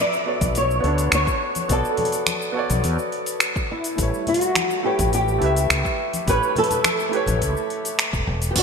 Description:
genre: sunset chillout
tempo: 105 BPM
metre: 4/4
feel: straight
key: unclear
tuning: A4 = 439 Hz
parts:
  - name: flamenco guitar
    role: melody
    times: 0.0-8.6 s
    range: E4 to D5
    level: -23 LUFS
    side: equal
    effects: ensemble chorus, digital delay, shimmer reverb
  - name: warm grand piano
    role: accompaniment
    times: 0.0-8.6 s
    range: G3 to E5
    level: -26 LUFS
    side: right 1 dB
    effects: auto-pan, low-pass filter, digital delay, shimmer reverb
  - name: deep house drum kit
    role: drums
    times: 0.1-8.6 s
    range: crash cymbal, finger snaps, hi-hat, shaker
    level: -24 LUFS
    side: equal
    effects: overdrive, gated reverb
  - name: mellow fretless electric bass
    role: bass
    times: 0.4-8.6 s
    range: E1 to E2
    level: -23 LUFS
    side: equal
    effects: none
  - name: electronic kick drum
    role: drums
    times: 0.4-8.6 s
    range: none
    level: -26 LUFS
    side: equal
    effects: overdrive
  - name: congas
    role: percussion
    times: 0.4-7.4 s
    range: none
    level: -34 LUFS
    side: left 3 dB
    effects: none
room: wet lush hall reverb, RT60 2.6 s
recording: bright 1980s-style digital production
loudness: -19 LUFS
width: side -5 dB against mid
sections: 0.0-8.6 A section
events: none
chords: 0.0 Bm9; 4.0 A9

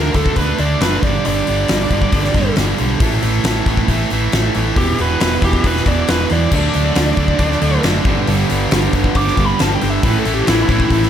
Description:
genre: hard rock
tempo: 137 BPM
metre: 4/4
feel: straight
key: unclear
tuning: A4 = 440 Hz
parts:
  - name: bluesy overdriven lead guitar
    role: melody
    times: 0.0-11.1 s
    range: E4 to D6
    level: -21 LUFS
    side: equal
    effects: distortion
  - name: cranked stack guitar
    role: riff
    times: 0.0-11.1 s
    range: E2 to D4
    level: -20 LUFS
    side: right 10 dB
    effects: overdrive
  - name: scooped high-gain guitar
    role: riff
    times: 0.0-11.1 s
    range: E2 to D4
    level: -23 LUFS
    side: left 11 dB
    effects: distortion
  - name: fingered electric bass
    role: bass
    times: 0.0-11.1 s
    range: E1 to E2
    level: -19 LUFS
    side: left 1 dB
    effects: none
  - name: huge arena drum kit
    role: drums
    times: 0.1-11.1 s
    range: crash cymbal, hi-hat, kick drum, snare drum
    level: -18 LUFS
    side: left 1 dB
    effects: none
  - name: overdriven electric guitar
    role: riff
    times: 6.5-11.1 s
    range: G2 to E4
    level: -22 LUFS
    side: equal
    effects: none
room: small room ambience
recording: none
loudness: -13 LUFS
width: side -9 dB against mid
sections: 0.0-11.1 A section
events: lead electric guitar solo 0.0-11.1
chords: 0.0 D; 1.0 G5; 3.0 A5; 4.8 E5; 6.5 D; 8.1 G; 10.0 A

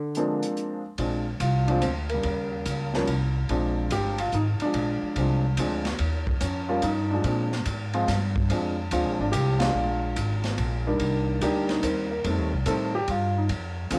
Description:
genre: jazz piano trio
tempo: 144 BPM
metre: 3/4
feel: swing 66% on 8ths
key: Bb mixolydian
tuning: A4 = 443 Hz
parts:
  - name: upright bass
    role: bass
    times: 0.0-14.0 s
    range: G1 to D3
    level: -30 LUFS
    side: equal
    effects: none
  - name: open jazz drum kit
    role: drums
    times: 0.1-14.0 s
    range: hi-hat, kick drum, ride cymbal, snare drum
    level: -35 LUFS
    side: equal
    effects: cassette tape
  - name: warm concert grand piano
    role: melody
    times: 0.2-14.0 s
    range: Db3 to A4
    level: -29 LUFS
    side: equal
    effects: cassette tape
room: light reverb, studio ambience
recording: home recording on cassette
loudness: -26 LUFS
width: mono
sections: 1.0-14.0 A section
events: band accent 9.5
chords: 0.0 Bb7; 2.2 Eb7; 3.5 Bb7; 6.0 Eb7; 7.2 Bb7; 11.0 Cm7; 12.2 F7

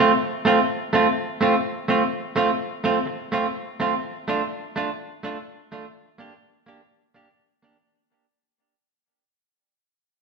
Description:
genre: ska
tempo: 126 BPM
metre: 4/4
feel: swing 54% on 8ths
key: F major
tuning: A4 = 440 Hz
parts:
  - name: clean electric guitar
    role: accompaniment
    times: 0.0-7.8 s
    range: A3 to G4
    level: -20 LUFS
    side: right 2 dB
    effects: tape echo
room: wet stone room reverb, RT60 1.4 s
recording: band playing live in one room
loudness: -21 LUFS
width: side -4 dB against mid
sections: 0.2-7.8 A section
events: fade-out 0.2-7.8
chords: 0.2 F; 4.0 Dm; 5.9 Gm

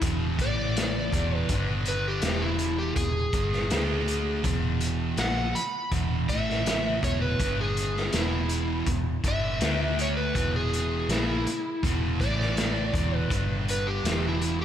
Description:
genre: blues rock power trio and southern rock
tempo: 81 BPM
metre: 4/4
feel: straight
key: unclear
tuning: A4 = 438 Hz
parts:
  - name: sludgy distorted guitar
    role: riff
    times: 0.0-14.6 s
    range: E2 to D4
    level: -30 LUFS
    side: right 1 dB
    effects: overdrive
  - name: vintage muted fingered electric bass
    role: bass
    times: 0.0-14.6 s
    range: E1 to D2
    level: -30 LUFS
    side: equal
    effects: none
  - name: raw garage drum kit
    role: drums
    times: 0.0-14.6 s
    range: hi-hat, kick drum, snare drum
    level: -30 LUFS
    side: equal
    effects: none
  - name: overdriven slide guitar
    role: melody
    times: 0.4-14.6 s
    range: E4 to B5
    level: -30 LUFS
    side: equal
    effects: analog delay
room: moderate lush hall reverb, RT60 2.4 s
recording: big arena sound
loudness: -24 LUFS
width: side -10 dB against mid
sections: 0.0-14.6 A section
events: none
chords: 0.4 A5; 1.1 E5; 1.5 G5; 2.2 E; 3.7 D5; 4.4 E5; 6.3 A5; 7.0 E5; 7.4 G5; 8.1 E5; 9.6 D5; 10.3 E5; 12.2 A5; 12.9 E5; 13.3 G5; 14.0 E5

